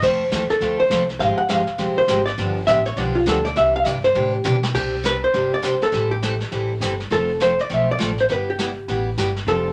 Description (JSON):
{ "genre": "country, western swing", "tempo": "203 BPM", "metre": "4/4", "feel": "swing 61% on 8ths", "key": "C major", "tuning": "A4 = 437 Hz", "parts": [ { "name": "vintage hollow-body jazz guitar", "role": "melody", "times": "0.0-9.7 s", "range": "F4 to F#5", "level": "-22 LUFS", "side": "equal", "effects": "none" }, { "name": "picked steel-string acoustic guitar", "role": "accompaniment", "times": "0.0-9.7 s", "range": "C3 to A4", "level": "-27 LUFS", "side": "equal", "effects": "none" }, { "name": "upright bass", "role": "bass", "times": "0.0-9.7 s", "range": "F1 to B2", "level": "-29 LUFS", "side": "equal", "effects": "none" }, { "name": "vintage brush drum kit", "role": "drums", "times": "0.0-9.7 s", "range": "brushed snare drum, crash cymbal, hi-hat, kick drum, snare drum, toms", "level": "-32 LUFS", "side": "equal", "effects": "none" } ], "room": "wet small room ambience, RT60 0.5 s", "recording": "none", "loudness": "-20 LUFS", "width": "mono", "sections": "0.0-4.7 A section; 4.7-9.7 B section", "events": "hollow-body jazz guitar solo 0.0-4.7; drum fill 4.2-4.7", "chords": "0.0 F; 1.2 Fmadd9; 2.4 G7; 3.6 Cadd9; 4.7 Csus2; 5.9 Am7; 7.1 F; 8.3 G6", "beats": "| 0.02 0.32 0.61 0.91 | 1.20 1.50 1.79 2.09 | 2.38 2.68 2.97 3.27 | 3.56 3.86 4.15 4.45 | 4.74 5.04 5.33 5.63 | 5.93 6.22 6.52 6.81 | 7.11 7.40 7.70 8.00 | 8.29 8.59 8.88 9.18 | 9.47" }